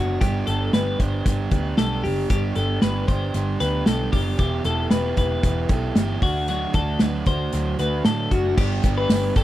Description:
jangly indie pop; 115 BPM; 4/4; straight; G major; A4 = 441 Hz
crunchy overdriven guitar; accompaniment; 0.0-9.4 s; D3 to G4; -27 LUFS; right 6 dB
twelve-string electric guitar; arpeggios; 0.0-9.4 s; F#4 to C5; -27 LUFS; left 4 dB
vintage muted picked electric bass; bass; 0.0-9.4 s; E1 to A2; -25 LUFS; equal
loose indie drum kit; drums; 0.2-9.4 s; crash cymbal, hi-hat, kick drum, snare drum; -22 LUFS; equal
tambourine; percussion; 8.6-9.4 s; -41 LUFS; right 15 dB
little or no reverb; -19 LUFS; side -14 dB against mid
0.0-8.6 A section
0.2 G; 4.4 Em; 6.2 D; 8.6 G

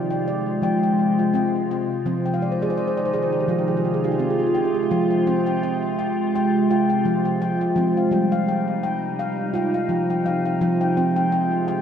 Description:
world meditative, meditative tuned percussion; 84 BPM; 4/4; swing 55% on 16ths; F minor; A4 = 440 Hz
glassy FM pad; sustained chords; 0.0-11.8 s; C3 to F4; -23 LUFS; equal; ensemble chorus, built-in reverb
handpan; arpeggios; 0.0-11.8 s; F3 to G5; -21 LUFS; equal; tape echo
wet lush hall reverb, RT60 2.9 s; dreamy mix soaked in reverb; -19 LUFS; side -8 dB against mid
0.0-4.9 A section; 4.9-11.8 B section
handpan fill 2.2-4.9
0.0 Fm; 2.0 Cm; 3.5 Fm; 7.8 Cm; 10.6 Fm

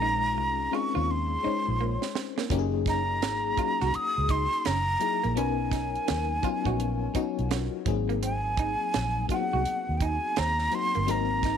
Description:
R&B, neo-soul; 84 BPM; 4/4; swing 62% on 16ths; A4 = 441 Hz
breathy mellow silver concert flute; melody; 0.0-11.6 s; Gb5 to Eb6; -28 LUFS; right 1 dB; slapback echo
electric guitar through a small old amp; second line; 0.0-11.6 s; Bb3 to Gb4; -37 LUFS; right 13 dB; vibrato effect
FM electric piano with soft pad layer; accompaniment; 0.0-11.6 s; Gb3 to Db5; -31 LUFS; left 14 dB; chorus, tremolo
vintage muted fingered electric bass; bass; 0.0-11.6 s; Gb1 to Eb2; -30 LUFS; right 1 dB
tight funk drum kit; drums; 2.0-11.6 s; hi-hat, kick drum, snare drum; -32 LUFS; right 4 dB
studio reverb; 1960s-style stereo with parts hard left and right; -25 LUFS; side -8 dB against mid
0.0-11.6 A section
drum fill 1.8-2.5
0.0 Bbm11; 2.5 Gb69; 4.6 Gb13; 5.4 Bmaj9; 7.9 Ab9

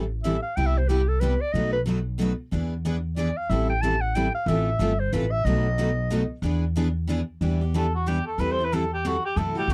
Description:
acoustic string swing (jazz manouche); 184 BPM; 3/4; swing 60% on 8ths; A4 = 439 Hz
picked steel-string acoustic guitar; accompaniment; 0.0-9.7 s; B2 to A4; -31 LUFS; equal
picked steel-string acoustic guitar; accompaniment; 0.0-9.7 s; B2 to B4; -35 LUFS; equal
upright bass; bass; 0.0-9.7 s; G1 to F#2; -28 LUFS; equal
warm clarinet; second line; 0.2-6.4 s; G4 to A5; -30 LUFS; equal
warm cor anglais; melody; 7.8-9.7 s; F#4 to C5; -29 LUFS; equal
light reverb; dry, close 1970s-style studio recording; -25 LUFS; mono
0.0-7.4 A section; 7.4-9.7 A section
clarinet solo 0.0-7.4; cor anglais solo 7.4-9.7
0.0 Am7; 0.6 Cmaj7; 1.5 B7; 2.5 E7; 3.5 Am7; 4.5 Fmaj7; 5.5 B7; 6.4 E7; 7.4 Em7; 8.4 Am7/E

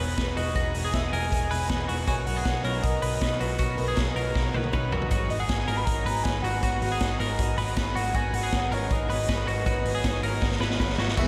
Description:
jangly indie pop; 158 BPM; 4/4; straight; A4 = 440 Hz
soft octave-layered synth lead; melody; 0.0-11.3 s; B4 to B5; -34 LUFS; equal; chorus, tape echo
picked twelve-string acoustic guitar; accompaniment; 0.0-11.3 s; G#2 to A#4; -37 LUFS; equal
twelve-string electric guitar; arpeggios; 0.0-11.3 s; F#4 to B4; -34 LUFS; equal; tape echo
vintage muted picked electric bass; bass; 0.0-11.3 s; E1 to B1; -32 LUFS; equal
raw garage drum kit; drums; 0.2-11.3 s; crash cymbal, hi-hat, kick drum, snare drum, toms; -30 LUFS; equal
warm analog pad; sustained chords; 11.2-11.3 s; E3 to G#4; -31 LUFS; equal; chorus
moderate huge ambient reverb, RT60 8.0 s; dreamy mix soaked in reverb; -26 LUFS; mono
0.0-11.2 A section
drum fill 4.4-5.1, 10.4-11.2
0.0 Emaj7; 2.1 Bmaj7; 5.1 G#m7

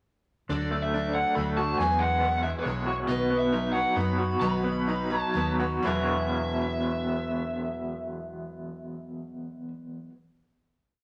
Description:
folk rock and heartland rock; 117-139 BPM; 3/4; straight; E major; A4 = 441 Hz
smooth overdriven lead guitar; melody; 0.5-9.7 s; B4 to B5; -33 LUFS; equal
picked steel-string acoustic guitar; accompaniment; 0.5-10.1 s; B2 to B4; -35 LUFS; equal
electric guitar through a small old amp; riff; 0.5-10.1 s; E2 to F#4; -32 LUFS; equal; tremolo
hollow-body short-scale fingered electric bass; bass; 0.5-10.1 s; E1 to F#2; -36 LUFS; equal
wet large studio reverb, RT60 1.0 s; -27 LUFS; mono
0.5-5.8 pre-chorus; 5.8-8.9 final chord
slowing down 3.1-5.8
0.5 D; 1.8 Eadd9; 3.1 B; 5.8 Eadd9

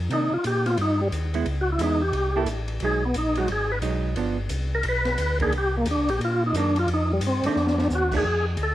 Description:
soul jazz organ trio; 177 BPM; 4/4; swing 64% on 8ths; A4 = 440 Hz
mellow tonewheel organ; bass; 0.0-8.7 s; G1 to C3; -26 LUFS; equal; slow rotary speaker
percussive tonewheel organ; melody; 0.1-8.7 s; G3 to B4; -24 LUFS; equal; slow rotary speaker, overdrive, chorus vibrato, cassette tape
hollow-body jazz guitar; accompaniment; 0.1-8.2 s; Eb3 to A4; -31 LUFS; right 6 dB; cassette tape
open jazz drum kit; drums; 0.1-8.7 s; crash cymbal, hi-hat, kick drum, ride cymbal, snare drum; -33 LUFS; left 2 dB
light reverb, small room ambience; home recording on cassette; -22 LUFS; side -13 dB against mid
0.0-8.2 A section
tonewheel organ solo 0.0-8.2; drum fill 7.6-7.9
0.1 Cm9; 1.5 Dbm7; 2.1 C6; 2.8 B6; 4.2 G7; 5.5 Cm9; 6.9 F7; 8.2 F6

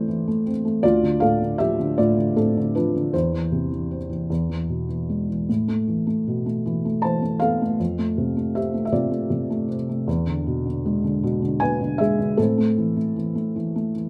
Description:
classical, lyrical solo piano; 52 BPM (dotted quarters); 6/8; rubato; A minor; A4 = 440 Hz
felt-muted upright piano; solo; 0.0-14.1 s; D2 to A5; -23 LUFS; equal
light reverb; -23 LUFS; mono
0.0-14.1 A section
0.0 Fmaj7/A; 0.8 Dm7; 3.1 C/E; 4.3 E; 5.5 Asus2; 7.8 F; 10.1 E7; 12.4 Am

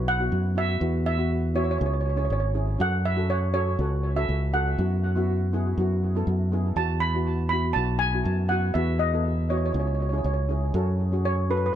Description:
calypso; 121 BPM; 4/4; straight; E major; A4 = 440 Hz
steel pan; melody; 0.0-11.8 s; B4 to B5; -28 LUFS; right 2 dB; tape echo
steel pan; accompaniment; 0.0-11.6 s; B3 to A4; -30 LUFS; left 2 dB; tape echo
fingered electric bass; bass; 0.0-11.7 s; G#1 to F#2; -25 LUFS; equal
light reverb; echo-heavy mix; -22 LUFS; side -10 dB against mid
0.0-11.8 A section
0.0 Bsus4; 0.8 Esus2; 1.8 C#m; 2.8 F#m; 4.8 Bsus4/F#; 6.8 Esus2; 7.8 Bsus4; 8.8 Esus2; 9.7 C#m; 10.7 F#m

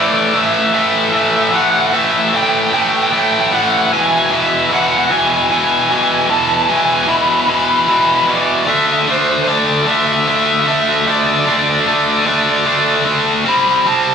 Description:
rock; 50 BPM (dotted quarters); 6/8; straight; A dorian; A4 = 440 Hz
overdriven semi-hollow guitar; melody; 0.0-14.1 s; C5 to B5; -16 LUFS; equal
biting overdriven guitar; riff; 0.0-14.1 s; E2 to D4; -13 LUFS; equal
wet studio reverb, RT60 0.7 s; band playing live in one room; -11 LUFS; side -7 dB against mid
0.0-14.1 A section
0.0 A5; 3.9 E; 8.7 D5; 13.5 C5

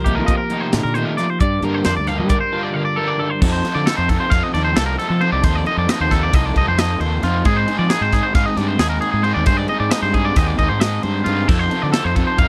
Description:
math rock and midwest emo; 268 BPM (eighths); 9/8; straight; A4 = 440 Hz
twelve-string electric guitar; accompaniment; 0.0-3.4 s; G2 to D5; -26 LUFS; equal
twangy electric guitar; arpeggios; 0.0-12.5 s; F4 to F5; -23 LUFS; equal
fuzz fingered electric bass; bass; 0.0-12.5 s; C2 to G3; -23 LUFS; equal; overdrive
overdriven semi-hollow guitar; riff; 0.1-12.5 s; C3 to A4; -26 LUFS; equal; harmonic tremolo
crisp fusion drum kit; drums; 0.1-12.5 s; crash cymbal, hi-hat, kick drum, ride cymbal, snare drum; -21 LUFS; equal
little or no reverb; dry, close 1970s-style studio recording; -18 LUFS; mono
0.0-3.4 A section; 3.4-12.5 B section
break 2.4-3.4
0.0 F9sus4; 1.4 Gm7; 3.4 F7; 7.5 Abmaj7; 11.5 F7

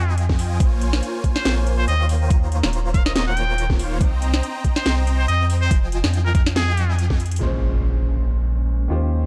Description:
future bass; 141 BPM; 4/4; swing 55% on 16ths, half-time; A4 = 441 Hz
trumpet with straight mute; melody; 0.0-7.0 s; Ab4 to G5; -29 LUFS; equal; sidechain pumping, digital delay
supersaw chords; riff; 0.0-7.2 s; Eb3 to Bb5; -30 LUFS; equal; phaser, sidechain pumping
saturated sub bass; bass; 0.0-9.3 s; Eb1 to F2; -22 LUFS; equal; tube saturation, sidechain pumping
trap drum kit; drums; 0.2-7.4 s; hi-hat, snare drum; -27 LUFS; equal; overdrive
electronic kick drum; drums; 0.3-7.2 s; -21 LUFS; equal; overdrive
warm grand piano; accompaniment; 7.4-9.3 s; Bb2 to C5; -31 LUFS; equal; sidechain pumping, digital delay
impact; sound effects; 7.4-9.1 s; -31 LUFS; equal
digital ambience; dark, warm production; -20 LUFS; mono
0.0-7.4 A section; 7.4-9.3 B section
drop 0.0-7.4; drum fill 7.2; impact 7.4-9.1
0.0 Fm9; 0.6 Bbm9; 2.1 Eb13; 4.0 Cm7; 5.7 Fm9; 7.4 Bbm9

